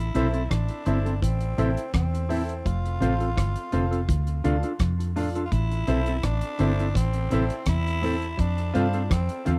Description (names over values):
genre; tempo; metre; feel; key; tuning
roots reggae; 84 BPM; 4/4; straight; A minor; A4 = 440 Hz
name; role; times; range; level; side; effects
growling tenor saxophone; melody; 0.0-9.5 s; C4 to F4; -36 LUFS; equal; tape echo
vintage muted fingered electric bass; bass; 0.0-9.6 s; F1 to G2; -27 LUFS; equal; none
clean electric guitar; arpeggios; 0.1-9.6 s; A2 to F3; -38 LUFS; equal; none
clear grand piano; stabs; 0.1-9.6 s; E4 to F5; -35 LUFS; equal; none
deep reggae drum kit; drums; 0.1-9.6 s; hi-hat, kick drum, rim click; -32 LUFS; equal; none
mellow electric guitar; accompaniment; 0.2-9.6 s; C4 to A4; -32 LUFS; equal; spring reverb, tape echo
room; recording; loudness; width
light reverb; rough home demo mix; -25 LUFS; mono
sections
0.0-9.6 A section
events
none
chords
0.0 Am; 2.7 F; 4.1 Dm; 5.5 Am; 8.4 F